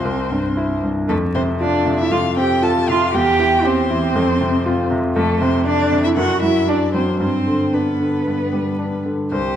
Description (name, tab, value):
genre	quick classical-period movement for piano trio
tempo	117 BPM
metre	4/4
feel	straight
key	F major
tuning	A4 = 441 Hz
part	warm violin	melody	0.0-9.6 s	A4 to A5	-24 LUFS	left 6 dB	none
part	rich cello	second line	0.0-9.6 s	A3 to A4	-20 LUFS	right 4 dB	none
part	bright concert grand piano	accompaniment	0.0-9.6 s	C2 to G4	-18 LUFS	equal	none
room	wet scoring stage reverb, RT60 2.0 s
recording	dark, warm production, vinyl crackle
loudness	-16 LUFS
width	side -10 dB against mid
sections	0.0-9.3 A section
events	none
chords	0.0 C; 1.1 F5; 3.1 C/E; 4.1 F5; 5.2 Dm7/F; 6.2 D/F#; 7.2 G